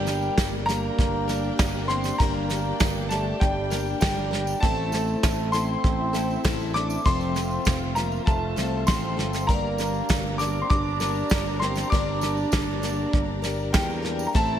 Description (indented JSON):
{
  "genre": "indie folk with a building arrangement",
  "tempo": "99 BPM",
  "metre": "4/4",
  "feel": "straight",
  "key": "unclear",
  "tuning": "A4 = 440 Hz",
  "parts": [
    { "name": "clear upright piano", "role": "melody", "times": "0.0-14.6 s", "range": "G5 to D6", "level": "-30 LUFS", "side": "left 1 dB", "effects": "none" },
    { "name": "warm trombone", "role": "second line", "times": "0.0-14.6 s", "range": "G3 to D4", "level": "-31 LUFS", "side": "right 5 dB", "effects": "none" },
    { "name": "picked plugged-in twelve-string acoustic guitar", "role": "accompaniment", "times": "0.0-14.6 s", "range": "F2 to Bb4", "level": "-31 LUFS", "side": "left 6 dB", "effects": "slapback echo" },
    { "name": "warm studio string section", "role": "sustained chords", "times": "0.0-14.6 s", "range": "D4 to Bb5", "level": "-37 LUFS", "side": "equal", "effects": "none" },
    { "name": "picked electric bass", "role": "bass", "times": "0.0-14.6 s", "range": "F1 to E2", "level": "-29 LUFS", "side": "equal", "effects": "none" },
    { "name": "soft brush drum kit", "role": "drums", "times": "0.1-14.5 s", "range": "kick drum, snare drum", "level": "-25 LUFS", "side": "equal", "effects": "none" },
    { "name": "tambourine", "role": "percussion", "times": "0.1-14.4 s", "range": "none", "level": "-41 LUFS", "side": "right 10 dB", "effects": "none" }
  ],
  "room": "moderate lush hall reverb, RT60 1.9 s, small room ambience",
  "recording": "big arena sound",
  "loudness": "-22 LUFS",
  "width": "side -10 dB against mid",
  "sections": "0.0-14.6 A section",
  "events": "none",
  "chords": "0.0 Gm; 4.6 Am; 7.1 F; 9.5 Gm"
}